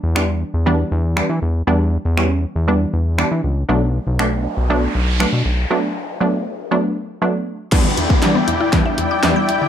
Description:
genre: dance-pop.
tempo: 119 BPM.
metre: 4/4.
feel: straight.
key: E minor.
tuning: A4 = 438 Hz.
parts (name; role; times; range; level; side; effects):
fat analog bass; bass; 0.0-5.7 s; B1 to E3; -18 LUFS; equal; sidechain pumping.
wide unison pluck; accompaniment; 0.2-9.5 s; E3 to D4; -20 LUFS; right 1 dB; sidechain pumping, plate reverb.
pop drum kit; drums; 0.2-9.6 s; crash cymbal, finger snaps, hi-hat, kick drum, snare drum; -19 LUFS; left 1 dB; none.
noise sweep, riser and downlifter; sound effects; 4.1-9.7 s; none; -25 LUFS; left 1 dB; none.
supersaw pad; sustained chords; 7.7-9.7 s; E4 to G5; -20 LUFS; left 2 dB; sidechain pumping, plate reverb.
mallet-like synth pluck; arpeggios; 7.7-9.7 s; E2 to G6; -23 LUFS; left 3 dB; chorus, sidechain pumping, ping-pong delay.
room: light reverb.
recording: none.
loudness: -16 LUFS.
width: side -9 dB against mid.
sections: 0.0-7.7 A section; 7.7-9.7 B section.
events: noise sweep 4.1-7.7; break 5.7-7.7; build-up 7.7-9.7; drum fill 7.7-9.7; riser 7.7-9.7.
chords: 0.0 Em7; 3.7 Bm7; 7.7 Em7.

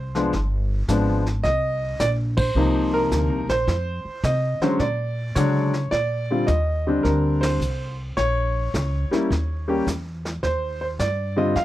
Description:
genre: jazz piano trio.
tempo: 107 BPM.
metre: 4/4.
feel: swing 67% on 8ths.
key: Eb major.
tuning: A4 = 439 Hz.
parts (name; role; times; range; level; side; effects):
warm concert grand piano; melody; 0.0-11.6 s; C3 to F5; -22 LUFS; equal; none.
upright bass; bass; 0.0-11.6 s; G1 to C#3; -24 LUFS; equal; none.
vintage brush drum kit; drums; 0.1-11.6 s; brushed snare drum, crash cymbal, hi-hat, kick drum, ride cymbal, snare drum; -29 LUFS; equal; none.
room: light reverb.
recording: dry, close 1970s-style studio recording.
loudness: -20 LUFS.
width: side -14 dB against mid.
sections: 0.0-5.9 A section; 5.9-11.6 B section.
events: band accent 2.3, 7.3.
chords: 0.3 G7b9; 1.4 Cm7; 3.7 F5; 4.8 Bb7alt; 5.9 Ebmaj7; 8.2 Bbm; 9.3 Eb7b9; 10.4 Ab6 (rootless).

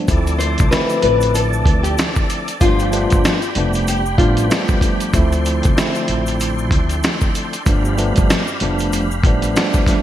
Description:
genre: hip hop, boom-bap hip-hop.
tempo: 95 BPM.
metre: 4/4.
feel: swing 58% on 16ths.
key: D dorian.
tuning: A4 = 440 Hz.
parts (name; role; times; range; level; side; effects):
tine electric piano; accompaniment; 0.0-10.0 s; D2 to E4; -21 LUFS; right 1 dB; medium stereo tremolo, cassette tape, high-pass filter, low-pass filter.
tonewheel organ; sustained chords; 0.1-10.0 s; D4 to C6; -26 LUFS; equal; chorus vibrato, fast rotary speaker, high-pass filter, low-pass filter.
upright bass; bass; 0.1-9.5 s; F1 to D2; -20 LUFS; equal; none.
dusty soul sampler-style drum kit; drums; 0.1-10.0 s; hi-hat, kick drum, snare drum; -17 LUFS; equal; gated reverb.
tube shaker; percussion; 0.1-10.0 s; none; -36 LUFS; left 6 dB; none.
nylon-string guitar; melody; 0.4-4.5 s; F4 to C5; -20 LUFS; left 4 dB; lush chorus, high-pass filter, low-pass filter, ping-pong delay.
room: light reverb.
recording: bright 1980s-style digital production, vinyl crackle.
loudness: -14 LUFS.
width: side -12 dB against mid.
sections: 0.1-10.0 A section.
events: none.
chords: 0.1 Dm7; 2.6 G7; 5.1 Dm7; 7.7 G7.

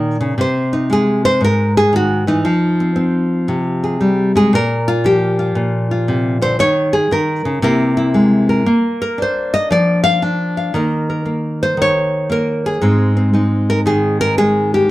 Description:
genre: solo jazz.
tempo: 116 BPM.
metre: 4/4.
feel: swing 66% on 8ths.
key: Eb major.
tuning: A4 = 437 Hz.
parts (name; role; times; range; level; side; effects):
nylon-string guitar; solo; 0.0-14.9 s; G#2 to F5; -13 LUFS; equal; none.
room: moderate club reverb, RT60 0.7 s.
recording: dark, warm production.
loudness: -13 LUFS.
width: side -16 dB against mid.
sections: 0.0-10.7 A section; 10.7-14.9 B section.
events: nylon-string guitar solo 0.0-10.7.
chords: 0.4 C(#5, no3); 2.4 Fm7; 4.5 Bb5; 6.6 Eb5; 7.6 Caug7; 8.7 Bb; 10.7 Eb5; 12.8 Ab.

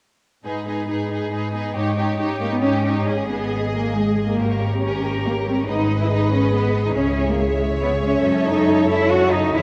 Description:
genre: classical.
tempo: 139 BPM.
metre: 3/4.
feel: rubato.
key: G# minor.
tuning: A4 = 440 Hz.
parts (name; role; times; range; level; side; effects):
warm symphonic violin section; melody; 0.4-9.6 s; B4 to E5; -35 LUFS; equal; none.
rich symphonic violin section; second line; 0.4-9.6 s; G4 to C#5; -30 LUFS; equal; none.
warm symphonic viola section; accompaniment; 0.4-9.6 s; D#4 to A4; -28 LUFS; equal; none.
concert harp; arpeggios; 0.4-9.6 s; E2 to C#5; -29 LUFS; equal; none.
warm symphonic cello section; bass; 0.4-9.6 s; G#2 to F#4; -24 LUFS; equal; none.
warm symphonic double bass section; bass; 3.1-9.6 s; G#1 to F#2; -27 LUFS; equal; none.
room: moderate scoring stage reverb, RT60 1.7 s.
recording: worn, warbling old tape, cassette tape, warbly pitch drift.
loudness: -20 LUFS.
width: mono.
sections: 0.4-3.1 A section; 3.1-9.6 B section.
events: none.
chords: 0.4 G#m; 1.8 D#7/G#; 3.1 G#m; 4.4 Gdim/G#; 5.7 G#m; 7.0 C#m; 8.2 F#m7.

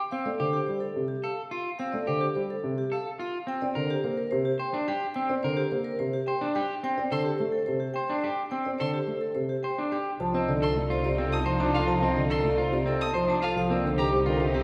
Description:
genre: classical, minimalist pattern music.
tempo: 107 BPM.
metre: 3/4.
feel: straight.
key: unclear.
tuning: A4 = 444 Hz.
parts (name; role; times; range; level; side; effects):
vibraphone with medium mallets; melody; 0.1-14.6 s; G4 to A5; -33 LUFS; equal; none.
electric guitar at the edge of break-up; arpeggios; 0.1-14.6 s; C4 to C5; -34 LUFS; equal; none.
dark grand piano; accompaniment; 0.3-14.6 s; C3 to C4; -32 LUFS; equal; none.
rich violin; arpeggios; 7.1-14.1 s; F5 to Eb6; -41 LUFS; equal; none.
dark symphonic string section; sustained chords; 10.2-14.6 s; Eb4 to G4; -38 LUFS; equal; none.
warm double bass; bass; 10.2-14.6 s; C2; -34 LUFS; equal; none.
room: wet scoring stage reverb, RT60 1.9 s.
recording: recorded in a church or concert hall.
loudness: -28 LUFS.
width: mono.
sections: 0.0-10.2 A section; 10.2-14.6 B section.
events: none.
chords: 0.1 Fadd9; 3.5 C5; 6.8 D5; 10.2 F7/C; 13.6 Ebmaj9/C.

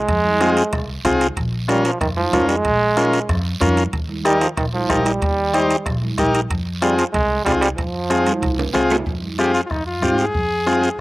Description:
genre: latin, cumbia.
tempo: 187 BPM.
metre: 4/4.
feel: straight.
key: F minor.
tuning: A4 = 445 Hz.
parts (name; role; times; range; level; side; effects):
bright trombone; second line; 0.0-8.7 s; Eb3 to Ab3; -20 LUFS; right 2 dB; none.
upright bass; bass; 0.0-10.9 s; Bb1 to Ab2; -25 LUFS; equal; none.
bombo; percussion; 0.1-10.8 s; none; -27 LUFS; equal; none.
congas; percussion; 0.1-10.8 s; none; -29 LUFS; right 3 dB; none.
guiro; percussion; 0.1-11.0 s; none; -33 LUFS; right 4 dB; none.
timbales; percussion; 0.1-9.0 s; none; -28 LUFS; right 4 dB; slapback echo.
combo organ; accompaniment; 0.4-10.9 s; C4 to C5; -18 LUFS; left 1 dB; none.
warm trumpet; melody; 9.4-11.0 s; Eb4 to Ab4; -22 LUFS; left 1 dB; none.
room: little or no reverb.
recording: recorded outdoors, with no room sound.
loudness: -16 LUFS.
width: side -18 dB against mid.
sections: 0.0-9.1 A section; 9.1-11.0 B section.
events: trombone solo 0.0-9.1; drum fill 8.3-9.1.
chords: 0.0 Fm; 1.4 Bbm; 3.9 Eb; 6.5 Fm.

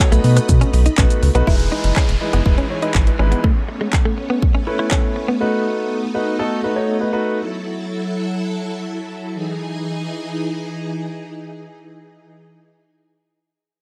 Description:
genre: dance-pop.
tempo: 122 BPM.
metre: 4/4.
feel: straight.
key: E major.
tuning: A4 = 439 Hz.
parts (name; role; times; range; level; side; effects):
warm concert grand piano; accompaniment; 0.0-7.4 s; G#3 to C#5; -24 LUFS; equal; sidechain pumping.
string machine, violins; sustained chords; 0.0-12.3 s; E3 to B5; -28 LUFS; equal; ensemble chorus, sidechain pumping.
pop drum kit; drums; 0.0-5.0 s; handclaps, hi-hat, kick drum, shaker; -19 LUFS; equal; none.
direct-recorded clean electric guitar; riff; 0.1-5.4 s; G#3 to E4; -25 LUFS; equal; analog chorus.
round analog bass; bass; 0.1-3.3 s; E1 to B2; -18 LUFS; equal; sidechain pumping.
downlifter; sound effects; 1.5-5.4 s; none; -34 LUFS; equal; none.
room: digital ambience.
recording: dark, warm production.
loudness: -19 LUFS.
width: mono.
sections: 0.0-1.5 A section; 1.5-9.3 B section; 9.3-13.3 C section.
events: drop 0.0-1.5.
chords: 0.0 B7; 1.5 Emaj7; 3.4 Aadd9; 5.4 B7; 7.4 F#m7; 9.3 Emaj7.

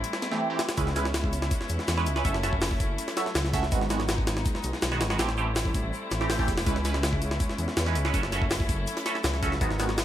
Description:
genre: drum and bass, jungle.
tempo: 163 BPM.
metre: 4/4.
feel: straight.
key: C# minor.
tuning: A4 = 442 Hz.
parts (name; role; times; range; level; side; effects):
warm studio string section; sustained chords; 0.0-10.0 s; F#3 to E4; -34 LUFS; left 2 dB; none.
detuned saw bass; bass; 0.0-10.0 s; E1 to E2; -29 LUFS; equal; none.
jungle sampler-style drum kit; drums; 0.0-10.0 s; hi-hat, kick drum, snare drum; -29 LUFS; equal; none.
band-passed chord stab; stabs; 0.3-9.9 s; D#3 to E5; -31 LUFS; right 4 dB; phaser, vintage 12-bit sampler grit, dub echo.
unplugged drum kit; drums; 0.8-10.0 s; hi-hat, shaker, snare drum; -40 LUFS; left 1 dB; high-pass filter on hats, high-pass filter on snare, high-pass filter on perc, high-pass filter on room.
room: studio reverb.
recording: vinyl crackle.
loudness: -25 LUFS.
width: side -12 dB against mid.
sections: 0.0-10.0 A section.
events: break 0.0-0.8.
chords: 0.0 Am7; 0.8 C#m7; 2.2 F#m7; 3.7 G#m7; 5.2 Am7; 6.7 C#m7; 8.1 F#m7.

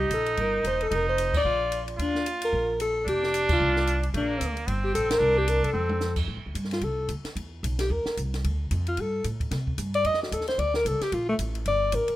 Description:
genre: jazz, small-group swing and bop.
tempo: 223 BPM.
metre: 4/4.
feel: swing 59% on 8ths.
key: F major from 6.3 s.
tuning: A4 = 440 Hz.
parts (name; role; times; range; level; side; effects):
mellow alto saxophone; melody; 0.0-12.2 s; A3 to Eb5; -26 LUFS; left 1 dB; none.
bright trumpet; second line; 0.0-6.1 s; Bb3 to F4; -29 LUFS; right 3 dB; none.
upright bass; bass; 0.0-12.1 s; E1 to C3; -29 LUFS; equal; none.
compact cocktail drum kit; drums; 0.1-12.1 s; crash cymbal, hi-hat, kick drum, ride cymbal, snare drum, toms; -34 LUFS; equal; none.
room: light reverb.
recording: minimal, uncompressed stereo recording.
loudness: -24 LUFS.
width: side -15 dB against mid.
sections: 0.0-6.3 A section; 6.3-12.2 B section.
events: band accent 1.3, 3.5, 5.1; drum fill 5.7; alto saxophone solo 6.3-12.2.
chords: 0.0 Cm7; 0.9 F5; 1.4 Bb; 2.0 Ebsus2; 3.1 Fsus2; 4.1 Bb; 4.7 Gm; 5.2 Csus2; 5.7 F; 6.3 F69; 7.4 E5; 7.9 Eb5; 8.4 Dm; 9.5 C5; 10.0 Ebmadd9; 10.6 Bbmaj9; 11.7 Gmadd9.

